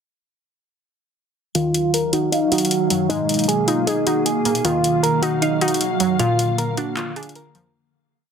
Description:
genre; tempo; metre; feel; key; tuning
hip hop, trap; 155 BPM; 4/4; half-time; Eb harmonic minor; A4 = 440 Hz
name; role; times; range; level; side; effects
glassy wavetable pluck; accompaniment; 1.5-7.7 s; Bb2 to F5; -22 LUFS; right 1 dB; chorus, low-pass filter
soft electric-piano-like synth keys; melody; 1.6-7.7 s; Eb4 to Bb4; -21 LUFS; equal; chorus, low-pass filter
glassy FM pad; sustained chords; 1.6-7.7 s; Cb3 to F5; -24 LUFS; right 1 dB; ensemble chorus, built-in reverb, low-pass filter
booming analog drum machine; drums; 1.6-7.6 s; handclaps, hi-hat; -24 LUFS; left 2 dB; none
room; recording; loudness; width
light reverb, digital ambience; dense, heavily limited modern master; -17 LUFS; side -7 dB against mid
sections
1.6-7.7 breakdown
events
filter sweep 1.6-7.7; fade-out 6.2-7.7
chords
1.6 Ebmadd9; 3.1 Abmadd9; 4.6 Ebmadd9; 6.2 Bb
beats
| 1.55 1.94 2.32 2.71 | 3.10 3.48 3.87 4.26 | 4.65 5.03 5.42 5.81 | 6.20 6.58 6.97 7.36

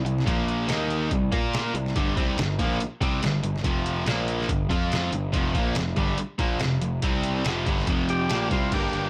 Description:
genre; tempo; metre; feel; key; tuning
classic rock; 142 BPM; 4/4; straight; unclear; A4 = 439 Hz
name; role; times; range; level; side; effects
cranked stack guitar; riff; 0.0-9.1 s; F2 to Bb4; -29 LUFS; equal; overdrive
fuzz picked electric bass; bass; 0.0-9.1 s; F1 to Bb2; -31 LUFS; equal; overdrive
trip hop sampler-style drum kit; drums; 0.1-9.0 s; crash cymbal, hi-hat, kick drum, snare drum; -30 LUFS; equal; none
overdriven tonewheel organ; melody; 8.1-9.1 s; F4 to G4; -30 LUFS; equal; none
picked steel-string acoustic guitar; accompaniment; 8.7-9.1 s; G2 to G4; -38 LUFS; equal; none
room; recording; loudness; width
digital ambience; none; -25 LUFS; mono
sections
0.0-8.7 A section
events
none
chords
0.3 Bb5; 0.7 Eb5; 1.1 C5; 1.3 Bb5; 1.7 C5; 2.0 Gm; 3.6 F5; 4.1 Bb5; 4.5 G5; 4.7 F5; 5.1 G5; 5.3 F5; 7.0 C5; 7.4 F5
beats
| 0.27 0.69 1.11 1.53 | 1.96 2.38 2.80 3.22 | 3.64 4.07 4.49 4.91 | 5.33 5.76 6.18 6.60 | 7.03 7.45 7.87 8.30 | 8.72

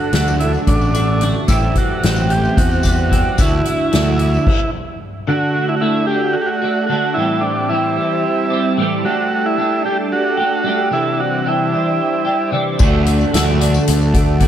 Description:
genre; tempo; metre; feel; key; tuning
psychedelic rock; 223 BPM (eighths); 7/8; straight; unclear; A4 = 439 Hz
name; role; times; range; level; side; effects
overdriven combo organ; melody; 0.0-12.5 s; D4 to G4; -20 LUFS; right 2 dB; analog delay
soft string machine; sustained chords; 0.0-14.5 s; A4 to A5; -28 LUFS; right 5 dB; ensemble chorus
twelve-string electric guitar; riff; 0.0-14.5 s; A2 to G4; -18 LUFS; equal; phaser, double-tracked left and right, analog delay
fuzz picked electric bass; bass; 0.1-4.4, 12.8-14.5 s; A1 to E2; -17 LUFS; equal; overdrive
soft-mallet drum kit; drums; 0.1-4.6, 12.8-14.5 s; crash cymbal, hi-hat, kick drum, snare drum; -18 LUFS; left 1 dB; none
tambourine; percussion; 0.3-4.4, 12.8-14.1 s; none; -32 LUFS; left 13 dB; none
room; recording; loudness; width
light reverb, small room ambience; echo-heavy mix; -14 LUFS; side -10 dB against mid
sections
0.0-5.3 A section; 5.3-14.5 B section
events
stop 4.5-5.3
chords
0.0 D; 1.5 Am7; 3.4 Dadd9; 5.3 D; 7.2 Am7; 9.0 Gsus2; 10.9 Cadd9; 12.8 D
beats
0.13 0.40 0.68 0.95 1.22 | 1.49 1.76 2.03 2.30 2.57 2.84 3.12 | 3.39 3.66 3.93 4.20 4.47 4.74 5.01 | 5.28 5.55 5.82 6.09 6.36 6.62 6.89 | 7.16 7.43 7.70 7.97 8.24 8.51 8.78 | 9.05 9.31 9.58 9.85 10.12 10.39 10.66 | 10.93 11.20 11.46 11.73 12.00 12.27 12.54 | 12.80 13.07 13.34 13.61 13.88 14.15 14.41

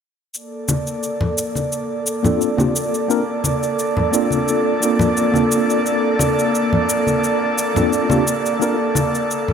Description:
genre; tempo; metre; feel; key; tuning
sunset chillout; 87 BPM; 4/4; swing 53% on 16ths; Bb major; A4 = 440 Hz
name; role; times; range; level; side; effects
airy breathy pad; sustained chords; 0.3-9.5 s; Bb3 to D5; -20 LUFS; right 1 dB; chorus
shaker; drums; 0.3-9.5 s; none; -26 LUFS; left 1 dB; overdrive
congas; percussion; 0.7-9.5 s; none; -22 LUFS; left 2 dB; none
mellow tine electric piano; accompaniment; 2.2-8.8 s; Bb3 to Bb4; -20 LUFS; left 1 dB; medium stereo tremolo, auto-pan, ping-pong delay
room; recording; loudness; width
wet lush hall reverb, RT60 2.7 s; bright 1980s-style digital production; -16 LUFS; side -7 dB against mid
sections
0.3-9.5 A section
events
none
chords
0.3 Bbmaj7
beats
| 0.34 1.02 1.72 2.40 | 3.09 3.78 4.47 5.16 | 5.85 6.54 7.23 7.92 | 8.61 9.30

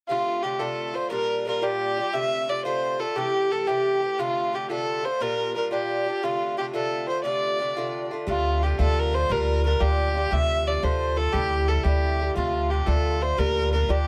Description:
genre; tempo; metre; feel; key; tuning
celtic folk, Celtic jig; 117 BPM (dotted quarters); 6/8; straight; D minor; A4 = 440 Hz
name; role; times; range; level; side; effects
dark fiddle; melody; 0.1-14.1 s; F4 to E5; -28 LUFS; equal; none
Irish bouzouki; accompaniment; 0.1-14.1 s; Bb2 to G4; -30 LUFS; equal; none
upright bass; bass; 8.3-14.1 s; D2; -26 LUFS; equal; none
room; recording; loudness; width
light reverb; close, detailed microphones; -25 LUFS; mono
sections
0.1-8.3 A section; 8.3-14.1 A section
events
none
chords
0.1 Dm7; 1.1 Gm7; 2.1 F; 3.2 C6; 4.2 Dm7; 5.2 Gm7; 6.2 Dm7; 9.3 Gm7/D; 10.3 F/D; 11.3 C6/D; 12.4 Dm7; 13.4 Gm7/D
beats
| 0.09 0.60 | 1.11 1.62 | 2.13 2.65 | 3.16 3.67 | 4.18 4.69 | 5.21 5.72 | 6.23 6.74 | 7.25 7.76 | 8.27 8.78 | 9.29 9.80 | 10.31 10.82 | 11.33 11.84 | 12.36 12.87 | 13.38 13.89

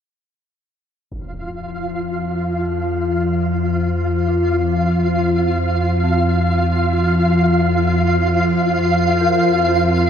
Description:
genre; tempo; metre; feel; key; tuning
dark ambient drone; free time; none; none; unclear; A4 = 436 Hz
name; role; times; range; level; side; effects
bowed-like drone; drone; 1.5-10.1 s; F2 to F3; -17 LUFS; equal; built-in reverb
impact; percussion; 1.1-1.3 s; none; -37 LUFS; equal; low-pass filter on sfx
flickering grainy texture; texture; 1.3-10.1 s; F4 to F5; -20 LUFS; right 1 dB; built-in reverb, shimmer reverb
dark detuned synth bell; arpeggios; 4.3-10.1 s; C4 to Bb4; -33 LUFS; right 4 dB; none
room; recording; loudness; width
wet huge ambient reverb, RT60 8.6 s; none; -15 LUFS; side -8 dB against mid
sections
1.1-10.1 A section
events
fade-in on impacts and reversed cymbals 1.1-10.1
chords
1.1 F5; 8.8 Bb5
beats
free time

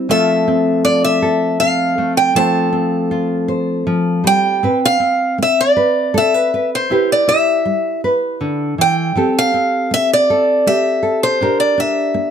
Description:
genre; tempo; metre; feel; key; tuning
folk; 80 BPM; 3/4; straight; unclear; A4 = 440 Hz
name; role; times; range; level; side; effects
nylon-string guitar; accompaniment; 0.0-12.3 s; A2 to C5; -17 LUFS; equal; none
picked acoustic archtop guitar; melody; 0.1-12.3 s; C5 to A5; -14 LUFS; equal; none
room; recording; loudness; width
light reverb; close, detailed microphones; -13 LUFS; side -8 dB against mid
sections
0.0-4.6 A section; 4.6-12.3 B section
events
none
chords
0.1 F; 2.3 Fadd9; 4.6 Amadd9; 6.9 Cmaj7; 9.2 Fadd9; 11.4 Bb6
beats
| 0.09 0.84 1.59 | 2.35 3.10 3.86 | 4.63 5.39 6.14 | 6.90 7.66 8.41 | 9.16 9.91 10.66 | 11.40 12.16

